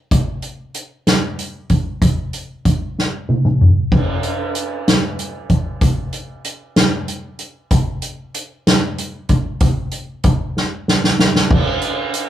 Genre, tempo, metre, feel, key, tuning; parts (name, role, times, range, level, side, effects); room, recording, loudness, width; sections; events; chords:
pop; 63 BPM (dotted quarters); 6/8; straight
soft-mallet drum kit; drums; 0.1-12.3 s; crash cymbal, hi-hat, kick drum, snare drum, toms; -15 LUFS; equal
moderate small room reverb, RT60 0.5 s; rough rehearsal-room recording; -15 LUFS; side -12 dB against mid
0.0-3.9 A section; 3.9-11.5 B section
drum fill 3.0-3.9, 10.6-11.5